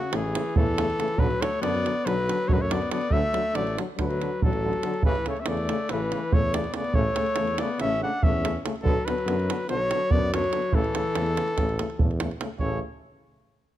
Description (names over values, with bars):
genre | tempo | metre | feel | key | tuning
balkan folk, Balkan brass band | 284 BPM (eighths) | 9/8 | straight | A major | A4 = 439 Hz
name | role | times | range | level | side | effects
clear flugelhorn | melody | 0.0-12.8 s | F#4 to F#5 | -28 LUFS | equal | none
clear alto saxophone | second line | 0.0-12.8 s | C#3 to D4 | -31 LUFS | left 5 dB | none
clear euphonium | accompaniment | 0.1-12.8 s | C#3 to D3 | -36 LUFS | right 6 dB | none
warm French horn | accompaniment | 0.1-12.8 s | F#3 to B3 | -34 LUFS | left 7 dB | none
warm tuba | bass | 0.1-12.8 s | A1 to F#2 | -31 LUFS | equal | none
davul | percussion | 0.1-12.8 s | none | -26 LUFS | right 2 dB | none
room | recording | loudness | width
light reverb | close, detailed microphones | -23 LUFS | side -13 dB against mid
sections
0.0-12.6 A section; 12.6-13.8 B section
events
speeding up 0.0-13.8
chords
0.0 A; 1.2 Bm; 3.1 D; 5.0 A; 8.8 Bm; 10.7 A